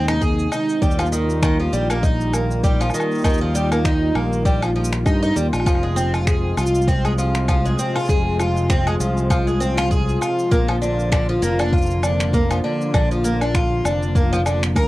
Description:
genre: folktronica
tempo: 99 BPM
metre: 4/4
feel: swing 56% on 16ths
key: F dorian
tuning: A4 = 441 Hz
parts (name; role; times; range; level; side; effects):
- warm analog pad; sustained chords; 0.0-14.9 s; C3 to F4; -25 LUFS; left 1 dB; wide subtle chorus, cassette tape
- picked twelve-string acoustic guitar; arpeggios; 0.0-14.9 s; D3 to Bb4; -22 LUFS; equal; cassette tape, analog delay
- modern bright fingered electric bass; bass; 0.0-14.9 s; F1 to G2; -22 LUFS; equal; none
- electronic finger snaps, woodblock and shaker; drums; 0.1-14.9 s; none; -28 LUFS; equal; none
- electronic kick drum; drums; 0.2-14.9 s; none; -20 LUFS; equal; none
room: light reverb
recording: home recording on cassette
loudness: -17 LUFS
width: side -17 dB against mid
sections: 0.0-14.9 A section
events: none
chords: 0.0 Ab; 0.8 Ebadd9; 5.7 Fm; 10.5 Bb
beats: 0.21 | 0.82 1.43 2.03 2.64 | 3.24 3.85 4.46 5.06 | 5.67 6.28 6.88 7.49 | 8.09 8.70 9.30 9.91 | 10.52 11.12 11.73 12.34 | 12.94 13.55 14.15 14.76

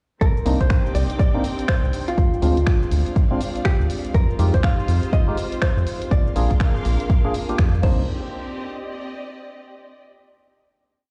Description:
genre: deep house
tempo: 122 BPM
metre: 4/4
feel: swing 60% on 16ths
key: C minor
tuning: A4 = 440 Hz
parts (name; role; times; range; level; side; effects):
- hollow-body jazz guitar; melody; 0.2-8.1 s; F4 to F5; -31 LUFS; equal; analog delay
- airy breathy pad; sustained chords; 0.2-8.1 s; Ab3 to C5; -35 LUFS; equal; chorus, sidechain pumping
- round analog bass; bass; 0.2-8.1 s; Bb1 to F2; -22 LUFS; equal; sidechain pumping
- electronic kick drum; drums; 0.2-8.0 s; none; -21 LUFS; equal; overdrive, vintage 12-bit sampler grit
- punchy analog drum machine; drums; 0.2-8.0 s; crash cymbal, finger snaps, hi-hat, shaker; -35 LUFS; equal; vintage 12-bit sampler grit
- clear studio string section; texture; 0.2-10.0 s; C4 to D6; -37 LUFS; equal; sidechain pumping
- percussive organ stab; stabs; 0.5-8.0 s; Ab3 to Ab4; -30 LUFS; equal; lush chorus, vintage 12-bit sampler grit, sidechain pumping, analog delay
room: light reverb, digital ambience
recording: played on a big sound system in a bare room, cassette tape, large studio reverb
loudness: -20 LUFS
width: mono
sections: 0.2-8.1 drop; 8.1-10.0 final chord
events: drop 0.2-8.1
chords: 0.2 Cm9; 2.2 Dm7b5; 4.1 Fm9; 5.9 Bb7; 7.8 Cm9; 8.1 Cmadd9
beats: | 0.21 0.70 1.20 1.69 | 2.18 2.67 3.16 3.65 | 4.14 4.64 5.13 5.62 | 6.11 6.61 7.10 7.59 | 8.08 8.57 9.06 9.55

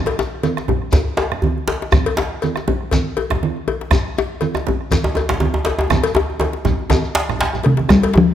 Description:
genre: west african traditional, West African drum ensemble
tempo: 120 BPM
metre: 4/4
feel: swing 55% on 16ths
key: unclear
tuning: A4 = 440 Hz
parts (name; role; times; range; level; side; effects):
- cowbell; percussion; 0.1-8.1 s; none; -25 LUFS; left 6 dB; none
- djembe; percussion; 0.1-8.3 s; none; -23 LUFS; left 4 dB; none
- djembe; percussion; 0.1-8.3 s; none; -20 LUFS; right 1 dB; none
- congas; percussion; 0.2-8.1 s; none; -23 LUFS; right 6 dB; none
- shekere; percussion; 0.2-8.0 s; none; -29 LUFS; left 1 dB; none
- bombo; percussion; 0.4-8.2 s; none; -21 LUFS; equal; none
- talking drum; melody; 7.7-8.3 s; C3 to G3; -12 LUFS; left 1 dB; none
room: moderate recital hall reverb, RT60 1.6 s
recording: faint mains hum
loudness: -16 LUFS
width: side -10 dB against mid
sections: 0.0-7.9 A section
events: drum fill 5.9-7.9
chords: none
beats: 0.43 0.93 1.43 | 1.93 2.42 2.92 3.42 | 3.92 4.42 4.92 5.41 | 5.91 6.41 6.91 7.40 | 7.90

